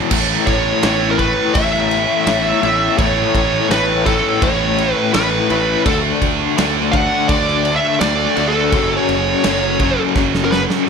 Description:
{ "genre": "quiet-loud alternative rock", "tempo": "84 BPM", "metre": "4/4", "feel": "straight", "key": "A major", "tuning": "A4 = 440 Hz", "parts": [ { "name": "overdriven semi-hollow guitar", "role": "riff", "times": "0.0-10.9 s", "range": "F#2 to D4", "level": "-20 LUFS", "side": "left 14 dB", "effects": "tremolo" }, { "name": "scooped high-gain guitar", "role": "riff", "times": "0.0-10.9 s", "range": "F#2 to D4", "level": "-20 LUFS", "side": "right 14 dB", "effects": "distortion" }, { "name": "rich studio string section", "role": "sustained chords", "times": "0.1-10.9 s", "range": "B3 to C#5", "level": "-29 LUFS", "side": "right 1 dB", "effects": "none" }, { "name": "growling fingered electric bass", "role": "bass", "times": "0.1-10.7 s", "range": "F#1 to D2", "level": "-24 LUFS", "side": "right 1 dB", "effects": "overdrive" }, { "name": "big rock drum kit", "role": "drums", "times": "0.1-10.9 s", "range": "crash cymbal, kick drum, snare drum", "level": "-20 LUFS", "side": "equal", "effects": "none" }, { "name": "high-gain lead guitar", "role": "melody", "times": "0.5-10.6 s", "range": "A4 to F#5", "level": "-18 LUFS", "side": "right 1 dB", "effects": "distortion, slapback echo" } ], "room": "small room ambience", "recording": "none", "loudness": "-13 LUFS", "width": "side -6 dB against mid", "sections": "0.1-10.9 A section", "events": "lead electric guitar solo 0.1-10.9; drum fill 10.2-10.9", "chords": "0.1 Aadd9; 5.9 D; 8.7 F#m" }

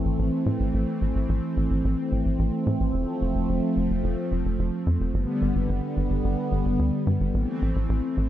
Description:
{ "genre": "synthwave", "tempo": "109 BPM", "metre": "4/4", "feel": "straight", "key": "A minor", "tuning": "A4 = 440 Hz", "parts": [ { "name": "lush unison pad", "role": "sustained chords", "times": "0.0-8.3 s", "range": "D3 to C4", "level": "-26 LUFS", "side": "equal", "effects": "chorus" }, { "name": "tight sequencer bass", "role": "bass", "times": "0.0-8.3 s", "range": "F1 to A2", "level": "-25 LUFS", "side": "equal", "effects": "none" } ], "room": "light reverb", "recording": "none", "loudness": "-23 LUFS", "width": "side -12 dB against mid", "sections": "0.0-8.3 A section", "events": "none", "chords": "0.0 Am; 2.9 F; 5.1 G; 7.3 Am" }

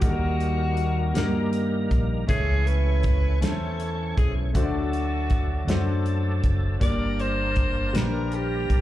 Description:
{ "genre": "slow gospel", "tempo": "53 BPM (dotted quarters)", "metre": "6/8", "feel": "straight", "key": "G harmonic minor", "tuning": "A4 = 441 Hz", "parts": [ { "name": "breathy alto saxophone", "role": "melody", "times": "0.0-8.8 s", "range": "F#4 to D5", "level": "-30 LUFS", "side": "equal", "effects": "slapback echo" }, { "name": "clear baby grand piano", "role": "accompaniment", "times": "0.0-8.8 s", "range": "G2 to D5", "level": "-30 LUFS", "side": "left 2 dB", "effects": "slapback echo" }, { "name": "overdriven tonewheel organ", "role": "sustained chords", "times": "0.0-8.8 s", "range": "Eb3 to C#5", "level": "-33 LUFS", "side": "right 2 dB", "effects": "slow rotary speaker, chorus vibrato" }, { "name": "fingered electric bass", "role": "bass", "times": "0.0-8.8 s", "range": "F#1 to G2", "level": "-25 LUFS", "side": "equal", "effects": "none" }, { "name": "warm soul drum kit", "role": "drums", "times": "0.0-8.8 s", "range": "hi-hat, kick drum, snare drum", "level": "-25 LUFS", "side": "equal", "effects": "none" } ], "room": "small room ambience", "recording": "live gig heard through the venue's PA, club reverb", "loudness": "-22 LUFS", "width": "side -14 dB against mid", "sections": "0.0-8.8 A section", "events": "none", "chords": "0.0 Eb; 2.3 A/C#; 4.6 D; 6.8 Gm" }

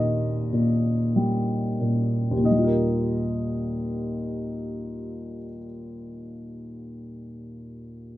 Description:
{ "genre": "classical, lyrical solo piano", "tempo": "46 BPM", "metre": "4/4", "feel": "rubato", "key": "Eb major", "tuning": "A4 = 440 Hz", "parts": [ { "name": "dark upright piano", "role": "solo", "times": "0.0-8.2 s", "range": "Eb2 to Eb5", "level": "-24 LUFS", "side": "equal", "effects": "none" } ], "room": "moderate studio reverb, RT60 0.8 s", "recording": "none", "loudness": "-22 LUFS", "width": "side -15 dB against mid", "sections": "0.0-2.5 A section; 2.5-7.7 B section", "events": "slowing down 0.0-2.5", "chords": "0.0 Eb; 2.5 Ebadd9" }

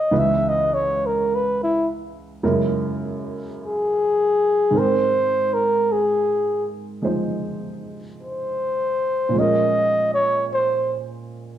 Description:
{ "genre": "jazz ballad", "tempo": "52 BPM", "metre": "4/4", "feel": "swing 68% on 8ths", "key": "Ab major", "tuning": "A4 = 439 Hz", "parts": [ { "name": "breathy flugelhorn", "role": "melody", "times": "0.0-11.0 s", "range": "Fb4 to Fb5", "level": "-19 LUFS", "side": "equal", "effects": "none" }, { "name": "warm baby grand piano", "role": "accompaniment", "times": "0.0-11.6 s", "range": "Db2 to C5", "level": "-25 LUFS", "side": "right 2 dB", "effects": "none" } ], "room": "moderate large studio reverb, RT60 1.2 s", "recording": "dark, warm production", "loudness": "-18 LUFS", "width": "side -11 dB against mid", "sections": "0.0-11.6 A section", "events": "flugelhorn solo 0.0-11.6", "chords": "0.1 Dbm7; 2.4 Gb9; 4.7 Ab; 9.3 Bbm7" }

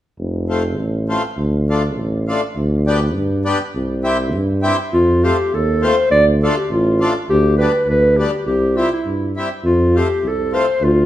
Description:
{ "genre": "alpine folk, alpine dance band", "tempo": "102 BPM", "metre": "2/4", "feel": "straight", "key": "F major", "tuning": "A4 = 439 Hz", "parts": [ { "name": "mellow tuba", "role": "bass", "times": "0.2-11.1 s", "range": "F1 to G2", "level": "-18 LUFS", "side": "equal", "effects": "none" }, { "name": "accordion", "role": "accompaniment", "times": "0.5-10.7 s", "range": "G3 to G4", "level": "-22 LUFS", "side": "left 2 dB", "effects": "none" }, { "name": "dark clarinet", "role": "melody", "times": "4.9-11.1 s", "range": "E4 to D5", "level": "-16 LUFS", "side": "equal", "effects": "none" } ], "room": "wet large studio reverb, RT60 1.3 s", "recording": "band playing live in one room", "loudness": "-14 LUFS", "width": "side -13 dB against mid", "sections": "0.2-4.9 A section; 4.9-11.1 B section", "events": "none", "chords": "0.2 F; 1.4 Dm; 2.6 G/D; 3.7 C; 4.9 F; 6.1 Dm; 7.3 G/D; 8.5 C; 9.6 F" }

